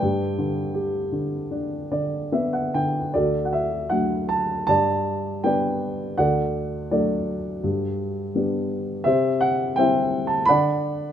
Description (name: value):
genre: classical, lyrical solo piano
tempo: 71-86 BPM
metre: 4/4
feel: rubato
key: G major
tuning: A4 = 444 Hz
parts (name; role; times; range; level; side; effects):
- dark baby grand piano; solo; 0.0-11.1 s; D2 to B5; -21 LUFS; equal; none
room: light reverb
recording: close, detailed microphones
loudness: -21 LUFS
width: side -9 dB against mid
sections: 0.0-3.1 A section; 3.1-11.1 B section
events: grand piano fill 1.5-3.1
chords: 0.0 G; 3.1 D; 4.7 G; 6.2 D; 7.6 G; 9.1 C; 10.5 D